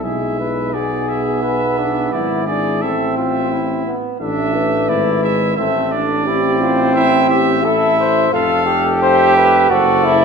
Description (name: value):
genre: classical, brass quintet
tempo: 87 BPM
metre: 4/4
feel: rubato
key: A minor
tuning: A4 = 440 Hz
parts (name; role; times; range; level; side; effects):
- dark trumpet; melody; 0.0-10.2 s; C4 to C5; -20 LUFS; left 6 dB; none
- bright trumpet; second line; 0.0-10.2 s; D5 to F5; -22 LUFS; right 6 dB; none
- mellow French horn; accompaniment; 0.0-10.2 s; E4 to C5; -23 LUFS; left 2 dB; none
- mellow trombone; accompaniment; 0.0-10.2 s; G#3 to G4; -17 LUFS; right 1 dB; none
- clear tuba; bass; 0.0-10.2 s; F1 to B1; -22 LUFS; right 4 dB; none
room: wet recital hall reverb, RT60 1.6 s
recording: minimal, uncompressed stereo recording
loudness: -13 LUFS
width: side -6 dB against mid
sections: 0.0-10.2 A section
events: none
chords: 0.1 E7/B; 2.8 Am; 4.2 E7/A; 5.6 Am; 8.3 F; 9.7 D7/F#